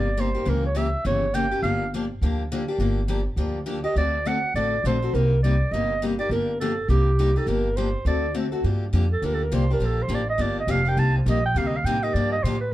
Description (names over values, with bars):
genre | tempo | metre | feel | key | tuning
acoustic string swing (jazz manouche) | 205 BPM | 4/4 | swing 60% on 8ths | G minor | A4 = 441 Hz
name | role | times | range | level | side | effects
breathy clarinet | melody | 0.0-12.7 s | G4 to A5 | -26 LUFS | right 2 dB | plate reverb
picked steel-string acoustic guitar | accompaniment | 0.0-12.6 s | C3 to A4 | -27 LUFS | left 3 dB | none
upright bass | bass | 0.0-12.7 s | F1 to A2 | -24 LUFS | equal | none
room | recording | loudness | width
light reverb | dark, warm production | -21 LUFS | side -14 dB against mid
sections
0.0-8.6 A section; 8.6-12.7 B section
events
clarinet solo 8.6-12.7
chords
0.5 C#dim7; 1.6 Gm7; 4.0 D7; 5.1 Cm9; 6.3 Gm9; 6.9 Cm7; 7.5 Gm7; 8.1 D7; 8.6 Gm9; 11.0 Cm9; 12.1 Gm9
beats
0.17 | 0.47 0.76 1.05 1.34 | 1.63 1.93 2.22 2.51 | 2.80 3.09 3.38 3.68 | 3.97 4.26 4.55 4.85 | 5.14 5.43 5.72 6.02 | 6.31 6.60 6.89 7.18 | 7.48 7.77 8.06 8.35 | 8.65 8.94 9.23 9.52 | 9.81 10.11 10.40 10.69 | 10.98 11.27 11.56 11.86 | 12.15 12.44 12.73